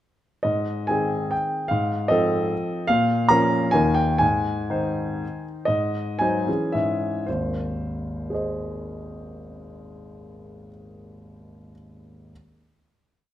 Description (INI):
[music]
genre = classical, romantic triple-time dance for piano with dotted rhythms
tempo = 104-162 BPM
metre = 3/4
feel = rubato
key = Ab major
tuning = A4 = 440 Hz
[part]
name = warm grand piano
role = solo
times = 0.4-12.3 s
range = Ab1 to Bb5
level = -21 LUFS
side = equal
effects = none
[sound]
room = moderate large studio reverb, RT60 1.3 s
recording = none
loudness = -21 LUFS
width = side -12 dB against mid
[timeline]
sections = 0.5-5.7 A section; 5.7-7.3 coda; 7.3-10.3 final chord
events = slowing down 3.5-7.3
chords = 0.5 Ab; 1.7 F7/Ab; 2.9 Bbm; 3.8 Eb; 4.2 Ab; 5.7 Ab7; 6.5 Dbm; 7.3 Ab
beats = | 0.45 0.90 1.32 | 1.71 2.12 2.53 | 2.90 3.31 3.75 | 4.22 4.72 5.23 | 5.70 6.21 6.73 | 7.27 7.78 8.29 | 8.78 9.28 9.78